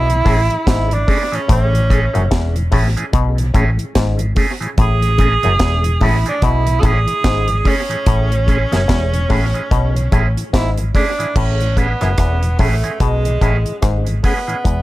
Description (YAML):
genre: roots reggae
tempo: 73 BPM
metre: 4/4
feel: swing 59% on 16ths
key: A major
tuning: A4 = 440 Hz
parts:
  - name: bright tenor saxophone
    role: melody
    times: 0.0-14.8 s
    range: G#3 to A4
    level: -20 LUFS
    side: right 3 dB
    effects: tape echo, plate reverb
  - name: auto-wah clav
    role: riff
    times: 0.0-14.8 s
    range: E2 to B2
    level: -24 LUFS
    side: left 6 dB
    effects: overdrive
  - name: hollow-body short-scale fingered electric bass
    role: bass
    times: 0.0-14.8 s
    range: E1 to B1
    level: -16 LUFS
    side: equal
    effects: none
  - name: mellow tonewheel organ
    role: accompaniment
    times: 0.1-14.6 s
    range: A2 to G#4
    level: -26 LUFS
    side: left 1 dB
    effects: chorus vibrato, dub echo
  - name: deep reggae drum kit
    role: drums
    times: 0.1-14.8 s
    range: crash cymbal, hi-hat, kick drum, rim click, snare drum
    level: -18 LUFS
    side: equal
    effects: dub echo
  - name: electric guitar with an envelope filter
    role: accompaniment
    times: 0.2-14.6 s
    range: E3 to G#4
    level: -26 LUFS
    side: right 4 dB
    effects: tape echo, plate reverb
room: light reverb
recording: none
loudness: -13 LUFS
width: side -17 dB against mid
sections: 0.0-11.4 A section; 11.4-14.8 B section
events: none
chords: 0.0 Amaj7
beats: 0.67 | 1.49 2.31 3.13 3.96 | 4.78 5.60 6.42 7.25 | 8.07 8.89 9.71 10.54 | 11.36 12.18 13.01 13.83 | 14.65